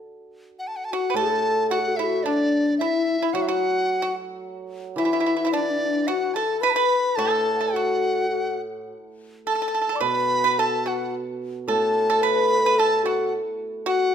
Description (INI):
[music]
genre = chinese traditional, Chinese chamber ensemble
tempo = 109 BPM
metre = 4/4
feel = rubato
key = unclear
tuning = A4 = 440 Hz
[part]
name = reedy large dizi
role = melody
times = 0.6-14.1 s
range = D5 to D6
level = -25 LUFS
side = equal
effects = none
[part]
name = mellow low xiao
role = second line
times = 0.9-14.1 s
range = D4 to A5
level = -25 LUFS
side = left 5 dB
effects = none
[part]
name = pipa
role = second line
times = 0.9-14.1 s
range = D4 to B4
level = -27 LUFS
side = right 8 dB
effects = none
[part]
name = hammered dulcimer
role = accompaniment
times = 1.1-13.3 s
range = A2 to F#3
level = -28 LUFS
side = right 2 dB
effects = none
[sound]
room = moderate recital hall reverb, RT60 1.5 s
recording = none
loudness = -20 LUFS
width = side -8 dB against mid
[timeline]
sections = 0.0-14.1 A section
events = none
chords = none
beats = | 0.03 0.59 1.16 1.71 | 2.26 2.81 3.35 3.90 | 4.44 4.98 5.53 6.08 | 6.62 7.17 7.74 8.31 | 8.89 9.46 10.02 10.59 | 11.14 11.69 12.23 12.78 | 13.33 13.87